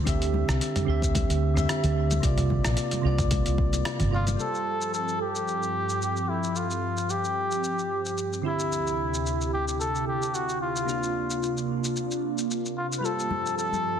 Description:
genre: sunset chillout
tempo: 111 BPM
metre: 4/4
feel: swing 54% on 16ths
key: unclear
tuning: A4 = 441 Hz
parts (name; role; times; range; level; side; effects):
- soft electric-piano-like synth keys; accompaniment; 0.0-14.0 s; C3 to E5; -31 LUFS; right 1 dB; chorus, auto-pan, low-pass filter, ping-pong delay
- fretless electric bass; bass; 0.0-4.3 s; G1 to D2; -25 LUFS; equal; lush chorus
- dusty soul sampler-style drum kit; drums; 0.1-13.8 s; hi-hat, rim click, shaker, toms; -33 LUFS; equal; soft clipping on snare
- electronic kick drum; drums; 0.1-3.7 s; none; -28 LUFS; equal; none
- congas; percussion; 0.3-4.4, 13.3-13.8 s; none; -36 LUFS; left 3 dB; none
- trumpet with cup mute; melody; 4.1-14.0 s; E4 to B4; -29 LUFS; equal; ping-pong delay
- airy breathy pad; sustained chords; 4.7-14.0 s; D2 to A4; -31 LUFS; right 1 dB; chorus, phaser
room: moderate plate reverb, RT60 2.0 s, digital ambience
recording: dense, heavily limited modern master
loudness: -24 LUFS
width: side -8 dB against mid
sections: 0.0-4.4 A section; 4.4-14.0 B section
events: filter sweep on analog synth pad 4.4-14.0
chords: 0.0 D9sus4; 2.2 C9sus4; 4.4 G9sus4; 8.4 D9sus4; 10.9 C9sus4; 13.0 G9sus4

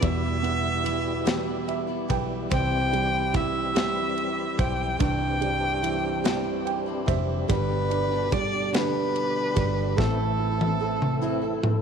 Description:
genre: six-eight pop ballad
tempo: 48 BPM (dotted quarters)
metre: 6/8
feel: straight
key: unclear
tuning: A4 = 440 Hz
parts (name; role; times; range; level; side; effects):
- rich violin; melody; 0.0-11.6 s; A4 to G5; -28 LUFS; left 1 dB; none
- warm upright piano; accompaniment; 0.0-11.8 s; G2 to G5; -29 LUFS; right 13 dB; none
- percussive tonewheel organ; sustained chords; 0.0-11.8 s; B2 to A4; -33 LUFS; left 1 dB; overdrive, chorus vibrato, slow rotary speaker
- picked steel-string acoustic guitar; arpeggios; 0.0-11.8 s; E2 to A4; -34 LUFS; left 15 dB; tape echo
- vintage muted fingered electric bass; bass; 0.0-11.8 s; E1 to C2; -31 LUFS; left 1 dB; none
- modern studio drum kit; drums; 0.0-11.8 s; kick drum, ride cymbal, snare drum, toms; -28 LUFS; left 1 dB; none
room: studio ambience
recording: 1960s-style stereo with parts hard left and right, lossy compression artefacts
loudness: -23 LUFS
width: side -7 dB against mid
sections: 0.0-11.8 A section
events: upright piano fill 1.3-2.5, 6.2-7.5; drum fill 10.0-11.8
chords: 0.0 Em; 2.5 C; 7.5 G; 10.0 Am

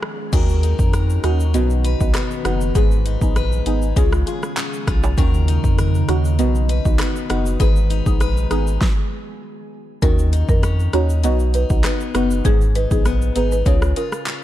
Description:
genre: dancehall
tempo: 99 BPM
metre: 4/4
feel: straight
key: Eb minor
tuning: A4 = 441 Hz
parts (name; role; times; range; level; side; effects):
- glassy FM pad; sustained chords; 0.0-8.8 s; Db3 to Ab4; -29 LUFS; right 2 dB; ensemble chorus, built-in reverb, sidechain pumping
- deep house drum kit; drums; 0.0-14.4 s; crash cymbal, handclaps, hi-hat, kick drum, rim click, shaker, snare drum; -20 LUFS; equal; none
- deep mellow chord stab; accompaniment; 0.3-14.2 s; B3 to Ab4; -25 LUFS; equal; chorus, phaser, sidechain pumping
- picked steel-string acoustic guitar; arpeggios; 0.3-14.4 s; Ab2 to B4; -27 LUFS; left 8 dB; ping-pong delay
- warm sub bass; bass; 0.3-13.9 s; F#1 to F2; -18 LUFS; equal; none
- tube shaker and timbales; percussion; 0.3-14.4 s; none; -37 LUFS; right 8 dB; none
- buzzing marimba with medium mallets; melody; 10.0-14.1 s; Ab4 to D#5; -26 LUFS; equal; ping-pong delay
room: digital ambience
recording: dark, warm production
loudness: -16 LUFS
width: side -13 dB against mid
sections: 0.3-10.0 A section; 10.0-14.4 B section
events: break 0.0-0.3; stop 8.8-10.0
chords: 0.3 Ebm7; 1.5 B; 2.8 Abm; 4.0 Db; 5.2 Ebm7; 6.4 B; 7.6 Abm; 8.8 N.C.; 10.0 Ebm7; 11.2 B; 12.4 Abm; 13.7 Db

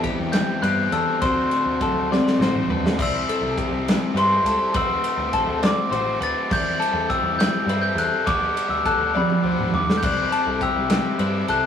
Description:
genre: math rock and midwest emo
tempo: 68 BPM (dotted quarters)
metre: 6/8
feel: straight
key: unclear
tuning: A4 = 440 Hz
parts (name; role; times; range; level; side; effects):
- twelve-string electric guitar; accompaniment; 0.0-3.0 s; E2 to F#4; -25 LUFS; equal; none
- twelve-string electric guitar; arpeggios; 0.0-11.7 s; G4 to D5; -27 LUFS; left 4 dB; none
- biting overdriven guitar; riff; 0.0-11.7 s; C3 to G4; -27 LUFS; left 2 dB; none
- modern studio drum kit; drums; 0.0-11.6 s; crash cymbal, kick drum, ride cymbal, snare drum, toms; -25 LUFS; right 1 dB; none
- overdriven picked electric bass; bass; 0.2-11.6 s; A1 to G2; -29 LUFS; left 1 dB; none
- glockenspiel with soft plastic mallets; melody; 0.3-11.7 s; B5 to A6; -23 LUFS; left 1 dB; none
room: moderate small room ambience, RT60 0.5 s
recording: rough rehearsal-room recording, tube saturation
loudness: -19 LUFS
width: side -8 dB against mid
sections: 0.0-3.0 A section; 3.0-11.7 B section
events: drum fill 2.1-3.0, 9.1-10.0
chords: 0.0 Cmaj9/E; 1.2 D7; 3.0 Cmaj9; 4.7 D7; 6.5 Cmaj9/E; 8.3 G/D; 10.0 Cmaj9

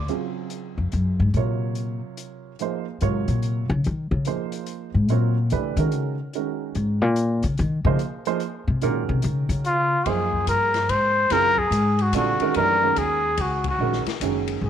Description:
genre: modal jazz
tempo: 145 BPM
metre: 3/4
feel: swing 65% on 8ths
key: Eb dorian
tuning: A4 = 439 Hz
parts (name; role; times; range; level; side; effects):
- upright bass; bass; 0.0-14.7 s; Gb1 to Eb3; -23 LUFS; left 2 dB; none
- warm baby grand piano; accompaniment; 0.1-14.7 s; C3 to Db5; -28 LUFS; right 10 dB; none
- open jazz drum kit; drums; 0.1-14.5 s; hi-hat, kick drum, ride cymbal, snare drum; -35 LUFS; left 8 dB; none
- breathy trumpet; melody; 9.7-14.7 s; F4 to C5; -20 LUFS; left 1 dB; none
room: moderate spring reverb, RT60 1.4 s, small room ambience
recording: 1960s-style stereo with parts hard left and right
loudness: -20 LUFS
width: side -9 dB against mid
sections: 0.1-10.1 A section; 10.1-14.7 B section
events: upright bass solo 0.1-10.1; band accent 13.6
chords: 0.1 Ebm11

